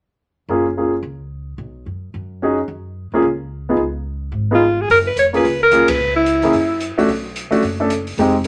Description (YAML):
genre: jazz, small-group swing and bop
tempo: 219 BPM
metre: 4/4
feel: swing 61% on 8ths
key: F# major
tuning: A4 = 440 Hz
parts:
  - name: warm baby grand piano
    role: accompaniment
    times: 0.5-8.3 s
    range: Ab3 to A4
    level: -19 LUFS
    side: equal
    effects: none
  - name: upright bass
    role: bass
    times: 0.5-8.5 s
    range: E#1 to C#3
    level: -30 LUFS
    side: equal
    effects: none
  - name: warm alto saxophone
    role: melody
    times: 4.5-6.9 s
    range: E4 to C#5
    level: -17 LUFS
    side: equal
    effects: none
  - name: open jazz drum kit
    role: drums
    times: 4.9-8.5 s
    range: hi-hat, kick drum, ride cymbal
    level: -32 LUFS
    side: equal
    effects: none
room: moderate studio reverb, RT60 0.6 s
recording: none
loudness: -18 LUFS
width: mono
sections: 0.5-4.9 A section; 4.9-8.5 B section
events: band accent 5.8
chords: 0.5 F#maj7; 1.6 B69; 2.7 F#maj7(no3); 3.8 C#; 4.9 F#maj7; 6.0 C#m; 6.5 F#5; 7.1 Bm7